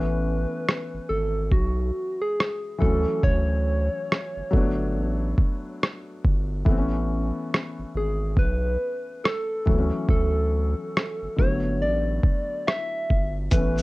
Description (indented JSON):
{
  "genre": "lo-fi hip hop",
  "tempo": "70 BPM",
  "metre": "4/4",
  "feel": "swing 63% on 16ths",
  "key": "A major",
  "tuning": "A4 = 440 Hz",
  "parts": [
    { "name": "soft struck synth lead", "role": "melody", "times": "0.0-13.8 s", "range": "F#4 to E5", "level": "-28 LUFS", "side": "equal", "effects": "chorus" },
    { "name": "felt-muted upright piano", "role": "accompaniment", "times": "0.0-13.8 s", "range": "D3 to D4", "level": "-30 LUFS", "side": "left 2 dB", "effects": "none" },
    { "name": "saturated sub bass", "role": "bass", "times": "0.0-13.8 s", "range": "G1 to D2", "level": "-26 LUFS", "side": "equal", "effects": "none" },
    { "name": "lo-fi sampler-style drum kit", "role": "drums", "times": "0.7-13.8 s", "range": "hi-hat, kick drum, rim click, shaker", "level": "-22 LUFS", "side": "equal", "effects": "overdrive" }
  ],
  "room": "little or no reverb",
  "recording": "cassette tape",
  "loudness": "-22 LUFS",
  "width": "side -21 dB against mid",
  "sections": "0.0-13.8 A section",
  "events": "break 0.0-13.5",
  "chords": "0.0 Amaj9; 2.8 Dmaj9; 4.5 Gmaj9; 6.7 Amaj9; 9.7 Dmaj9; 11.4 Gmaj9"
}